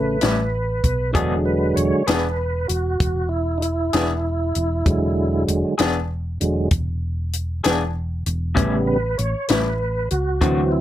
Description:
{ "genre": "slow blues", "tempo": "65 BPM (dotted quarters)", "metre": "12/8", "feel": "straight", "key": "A major", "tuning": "A4 = 440 Hz", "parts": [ { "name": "tonewheel organ", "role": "sustained chords", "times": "0.0-10.8 s", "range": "C#3 to C#5", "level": "-22 LUFS", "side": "right 2 dB", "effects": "slow rotary speaker, overdrive, chorus vibrato" }, { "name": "hollow-body short-scale fingered electric bass", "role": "bass", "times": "0.0-10.8 s", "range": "E1 to D2", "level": "-24 LUFS", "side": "equal", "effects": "none" }, { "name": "electric guitar through a small old amp", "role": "accompaniment", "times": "0.2-10.6 s", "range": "A2 to G#4", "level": "-23 LUFS", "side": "left 3 dB", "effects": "tremolo" }, { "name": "compact cocktail drum kit", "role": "drums", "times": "0.2-10.6 s", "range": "hi-hat, kick drum, snare drum", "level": "-22 LUFS", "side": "left 1 dB", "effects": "none" } ], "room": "light reverb", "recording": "none", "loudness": "-19 LUFS", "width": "side -12 dB against mid", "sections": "0.0-10.8 A section", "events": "tonewheel organ solo 0.0-10.8", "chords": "0.0 A7; 1.1 E7; 8.6 A7" }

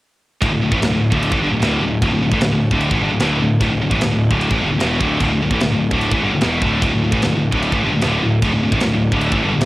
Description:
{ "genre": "heavy metal", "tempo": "150 BPM", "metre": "4/4", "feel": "straight", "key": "unclear", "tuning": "A4 = 440 Hz", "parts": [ { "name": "heavy high-gain guitar", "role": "riff", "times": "0.4-9.6 s", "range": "D2 to E3", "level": "-23 LUFS", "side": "right 6 dB", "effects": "distortion, cassette tape" }, { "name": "scooped high-gain guitar", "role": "riff", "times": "0.4-9.6 s", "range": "D2 to E3", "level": "-18 LUFS", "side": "left 2 dB", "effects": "distortion, cassette tape" }, { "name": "fuzz picked electric bass", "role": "bass", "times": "0.4-9.6 s", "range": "D1 to A1", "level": "-21 LUFS", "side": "equal", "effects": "overdrive" }, { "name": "tight metal drum kit", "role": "drums", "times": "0.4-9.7 s", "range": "crash cymbal, kick drum, snare drum", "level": "-22 LUFS", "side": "equal", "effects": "none" } ], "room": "studio reverb", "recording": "home recording on cassette", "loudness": "-15 LUFS", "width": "side -18 dB against mid", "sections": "0.4-9.7 A section", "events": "none", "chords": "0.4 D5" }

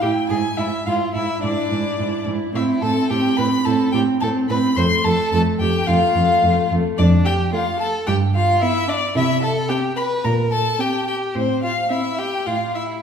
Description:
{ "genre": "quick classical-period movement for string quartet", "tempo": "108 BPM", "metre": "4/4", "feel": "rubato", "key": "unclear", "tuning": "A4 = 440 Hz", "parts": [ { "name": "clear violin", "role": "melody", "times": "0.0-12.8 s", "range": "C5 to C6", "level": "-22 LUFS", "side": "left 2 dB", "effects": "none" }, { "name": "rich violin", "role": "second line", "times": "0.0-13.0 s", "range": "C4 to C5", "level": "-24 LUFS", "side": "left 1 dB", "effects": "none" }, { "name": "rich viola", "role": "accompaniment", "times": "0.0-12.3 s", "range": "A3 to E4", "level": "-23 LUFS", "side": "right 2 dB", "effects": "none" }, { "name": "clear cello", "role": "bass", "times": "0.0-12.9 s", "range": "F2 to C3", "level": "-21 LUFS", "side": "right 2 dB", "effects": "none" } ], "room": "wet recital hall reverb, RT60 1.5 s", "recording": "heard from further back in the room", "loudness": "-17 LUFS", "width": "side -7 dB against mid", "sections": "0.0-13.0 A section", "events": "none", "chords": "0.3 E7/G#; 2.5 Am; 4.8 F; 8.1 G; 9.2 Cmaj7; 10.2 Gmadd9/Bb; 11.4 Fmaj9/A" }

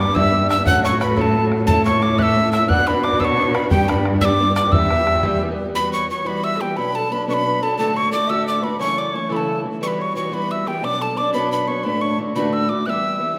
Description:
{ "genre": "celtic folk, Celtic jig", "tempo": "118 BPM (dotted quarters)", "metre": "6/8", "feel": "straight", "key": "E dorian", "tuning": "A4 = 440 Hz", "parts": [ { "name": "breathy mellow wooden whistle", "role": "melody", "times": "0.0-13.4 s", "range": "G5 to F#6", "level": "-23 LUFS", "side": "equal", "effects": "none" }, { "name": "wooden flute", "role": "second line", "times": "0.0-13.4 s", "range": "G4 to F#5", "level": "-28 LUFS", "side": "equal", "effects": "none" }, { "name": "fingerpicked steel-string acoustic guitar", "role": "accompaniment", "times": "0.0-13.4 s", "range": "D2 to B4", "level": "-25 LUFS", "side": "equal", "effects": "none" }, { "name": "rich cello", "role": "bass", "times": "0.0-5.7 s", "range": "E2 to B2", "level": "-24 LUFS", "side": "equal", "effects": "none" }, { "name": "bodhran", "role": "percussion", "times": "0.0-5.3 s", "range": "none", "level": "-26 LUFS", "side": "equal", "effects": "none" } ], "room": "wet recital hall reverb, RT60 1.5 s", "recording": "recorded in a church or concert hall", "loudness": "-19 LUFS", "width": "mono", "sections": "0.0-5.7 A section; 5.7-13.4 B section", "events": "none", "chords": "0.0 G; 0.7 F#m/A; 1.7 A; 2.7 Bm; 3.7 G; 4.7 Em; 5.7 Emadd9; 6.8 Bmadd9; 7.8 D; 8.8 F#m7; 9.8 Emadd9; 10.8 Bmadd9; 11.8 D; 12.9 Em" }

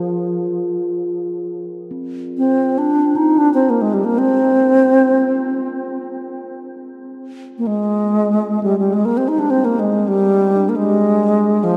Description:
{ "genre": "world meditative, free-time meditation music", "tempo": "free time", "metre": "none", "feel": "none", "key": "F dorian", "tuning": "A4 = 441 Hz", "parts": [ { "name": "bright reedy bass flute", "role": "melody", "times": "0.0-11.8 s", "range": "F3 to Eb4", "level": "-17 LUFS", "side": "equal", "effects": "tape echo" }, { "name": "quartz singing bowl", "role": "texture", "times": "0.0-11.8 s", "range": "C4 to Bb4", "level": "-29 LUFS", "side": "equal", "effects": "none" } ], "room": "wet cathedral reverb, RT60 5.5 s", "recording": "in a vast, echoing space", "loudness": "-16 LUFS", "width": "mono", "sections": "0.0-1.5 A section; 1.5-11.8 A section", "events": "none", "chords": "none" }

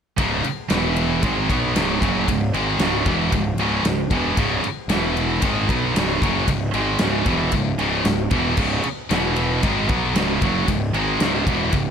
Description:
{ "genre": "heavy metal", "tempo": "114 BPM", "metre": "4/4", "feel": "straight", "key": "C# minor", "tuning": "A4 = 439 Hz", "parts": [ { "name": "heavy high-gain guitar", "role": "riff", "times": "0.2-11.9 s", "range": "C#2 to B3", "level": "-25 LUFS", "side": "left 14 dB", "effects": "distortion" }, { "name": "scooped high-gain guitar", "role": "riff", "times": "0.2-11.9 s", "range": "C#2 to B3", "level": "-24 LUFS", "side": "right 9 dB", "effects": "distortion" }, { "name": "tight distorted guitar", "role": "riff", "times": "0.2-11.9 s", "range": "C#2 to B3", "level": "-27 LUFS", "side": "equal", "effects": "distortion" }, { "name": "fuzz picked electric bass", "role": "bass", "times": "0.2-11.9 s", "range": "C#1 to B1", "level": "-25 LUFS", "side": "left 1 dB", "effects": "overdrive" }, { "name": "big rock drum kit", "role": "drums", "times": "0.2-11.9 s", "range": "crash cymbal, kick drum, ride cymbal, snare drum", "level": "-24 LUFS", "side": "equal", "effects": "none" } ], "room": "little or no reverb", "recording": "none", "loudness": "-18 LUFS", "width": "side -7 dB against mid", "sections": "0.2-11.9 A section", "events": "none", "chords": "0.2 C#5; 0.7 E5; 1.2 C#m; 4.9 E5; 5.4 C#m; 9.1 E5; 9.6 C#m" }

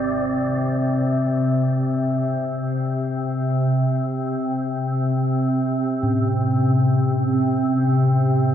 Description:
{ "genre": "dark ambient drone", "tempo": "free time", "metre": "none", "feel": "none", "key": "unclear", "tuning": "A4 = 440 Hz", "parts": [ { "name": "organ-like drone", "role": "drone", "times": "0.0-8.5 s", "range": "G#1 to C3", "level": "-19 LUFS", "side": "equal", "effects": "ensemble chorus, built-in reverb" }, { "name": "bronze singing bowl", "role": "arpeggios", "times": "6.0-8.5 s", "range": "A2", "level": "-24 LUFS", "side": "right 1 dB", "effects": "tape echo" } ], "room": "wet cathedral reverb, RT60 4.9 s", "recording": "none", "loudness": "-19 LUFS", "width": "side -10 dB against mid", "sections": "0.1-8.5 A section", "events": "none", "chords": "0.1 Am" }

